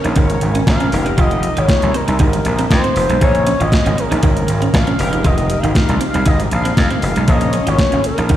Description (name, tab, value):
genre	early-eighties boogie funk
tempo	118 BPM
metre	4/4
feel	straight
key	Bb dorian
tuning	A4 = 439 Hz
part	expressive portamento lead	melody	0.0-8.4 s	Bb4 to F5	-20 LUFS	equal	chorus, plate reverb, slapback echo, tape echo
part	chorused polysynth	accompaniment	0.0-8.4 s	Ab3 to Db5	-24 LUFS	left 4 dB	plate reverb, slapback echo
part	clean electric guitar	riff	0.0-8.4 s	Ab3 to F4	-24 LUFS	right 5 dB	lush chorus, slapback echo
part	gritty slap bass	bass	0.0-8.4 s	F1 to F2	-17 LUFS	equal	overdrive
part	crisp 8-bit digital drum machine	drums	0.0-8.4 s	hi-hat, kick drum, snare drum	-16 LUFS	equal	overdrive
room	light reverb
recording	live gig heard through the venue's PA, recital hall reverb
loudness	-12 LUFS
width	side -12 dB against mid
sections	0.0-8.4 A section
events	none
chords	0.0 Bbm7; 0.9 Fm11; 3.2 Bbm7; 5.0 Fm11; 7.3 Bbm7